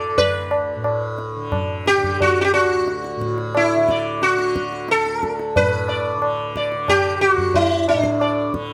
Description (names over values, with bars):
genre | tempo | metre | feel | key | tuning
indian classical, Hindustani | 90 BPM | 4/4 | straight | D raga bilaval | A4 = 438 Hz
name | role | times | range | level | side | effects
sitar | melody | 0.0-8.5 s | D4 to D5 | -20 LUFS | equal | none
tanpura | drone | 0.0-8.7 s | D2 to D3 | -31 LUFS | equal | none
tabla | percussion | 0.2-8.7 s | none | -26 LUFS | equal | none
room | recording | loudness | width
moderate studio ambience, RT60 0.5 s | none | -20 LUFS | mono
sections
0.0-5.6 A section; 5.6-8.7 B section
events
none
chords
none